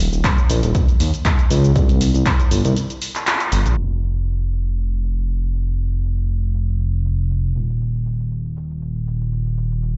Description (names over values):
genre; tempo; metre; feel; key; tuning
deep house; 119 BPM; 4/4; swing 54% on 16ths; unclear; A4 = 441 Hz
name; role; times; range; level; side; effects
smooth synth bass; bass; 0.0-10.0 s; Eb1 to Eb2; -21 LUFS; equal; sidechain pumping
punchy analog drum machine; drums; 0.0-9.9 s; handclaps, hi-hat, shaker; -25 LUFS; equal; none
electronic kick drum; drums; 0.2-2.4 s; none; -19 LUFS; equal; none
room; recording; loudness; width
light reverb; played on a big sound system in a bare room, large studio reverb, low-pass filter, nothing above 7.9 kHz; -19 LUFS; mono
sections
0.0-3.8 A section; 3.8-10.0 B section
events
break 2.8-3.8; band accent 3.3; filter sweep 3.8-10.0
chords
none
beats
0.24 0.75 1.25 | 1.76 2.26 2.76 3.27 | 3.77 4.28 4.78 5.29 | 5.79 6.29 6.80 7.30 | 7.81 8.31 8.81 9.32 | 9.82